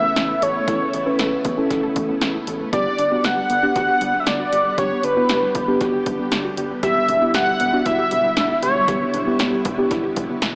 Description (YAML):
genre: synth-pop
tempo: 117 BPM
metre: 4/4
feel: straight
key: A mixolydian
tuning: A4 = 440 Hz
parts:
  - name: octave-doubled lead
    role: melody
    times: 0.0-9.4 s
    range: B4 to F#5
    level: -22 LUFS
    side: equal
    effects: chorus, phaser, tape echo
  - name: muted felt-like synth keys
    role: accompaniment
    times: 0.0-10.3 s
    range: B3 to B4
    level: -26 LUFS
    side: equal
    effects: chorus, tape echo
  - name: string machine, full ensemble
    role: sustained chords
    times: 0.0-10.6 s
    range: C#3 to F#5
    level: -31 LUFS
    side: equal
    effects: ensemble chorus
  - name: unison pluck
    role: arpeggios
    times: 0.0-10.5 s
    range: G3 to A4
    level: -31 LUFS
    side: equal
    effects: tape echo
  - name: rubbery square bass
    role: bass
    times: 0.0-10.6 s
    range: E1 to A1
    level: -36 LUFS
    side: equal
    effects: none
  - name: punchy analog drum machine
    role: drums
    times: 0.2-10.5 s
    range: hi-hat, kick drum, snare drum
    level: -28 LUFS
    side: equal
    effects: tape echo
room: moderate plate reverb, RT60 2.7 s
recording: echo-heavy mix, small speaker sound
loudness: -20 LUFS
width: mono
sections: 0.0-10.6 A section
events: none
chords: 0.0 Aadd9; 2.7 Gmaj7; 6.8 Em7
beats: 0.17 | 0.68 1.19 1.70 2.22 | 2.73 3.24 3.75 4.27 | 4.78 5.29 5.81 6.32 | 6.83 7.34 7.86 8.37 | 8.88 9.39 9.91 10.42